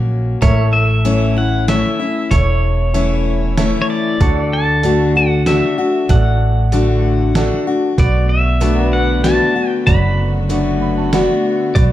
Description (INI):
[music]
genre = honky-tonk and classic country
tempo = 95 BPM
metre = 3/4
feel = straight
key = unclear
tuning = A4 = 440 Hz
[part]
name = picked steel-string acoustic guitar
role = accompaniment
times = 0.0-11.9 s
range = E2 to F#4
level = -18 LUFS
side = left 4 dB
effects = none
[part]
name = pedal steel guitar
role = sustained chords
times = 0.0-11.9 s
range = A4 to E5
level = -27 LUFS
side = right 4 dB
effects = none
[part]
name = upright bass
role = bass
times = 0.0-11.9 s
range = E1 to D2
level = -16 LUFS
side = right 1 dB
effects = none
[part]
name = pedal steel guitar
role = melody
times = 0.4-11.8 s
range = C#5 to B5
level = -20 LUFS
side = left 1 dB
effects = none
[part]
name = clear concert grand piano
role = accompaniment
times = 0.4-11.9 s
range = E4 to B5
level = -24 LUFS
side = right 6 dB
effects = none
[part]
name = trip hop sampler-style drum kit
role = drums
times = 0.4-11.9 s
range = hi-hat, kick drum, snare drum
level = -17 LUFS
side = right 1 dB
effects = none
[part]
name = rich chamber string section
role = sustained chords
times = 8.0-11.9 s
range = D3 to F#4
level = -28 LUFS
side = right 1 dB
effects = none
[sound]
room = light reverb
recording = dark, warm production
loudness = -12 LUFS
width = side -13 dB against mid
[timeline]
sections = 0.4-11.9 A section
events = grand piano fill 10.5-11.8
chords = 0.4 A; 4.2 D; 8.0 Bm7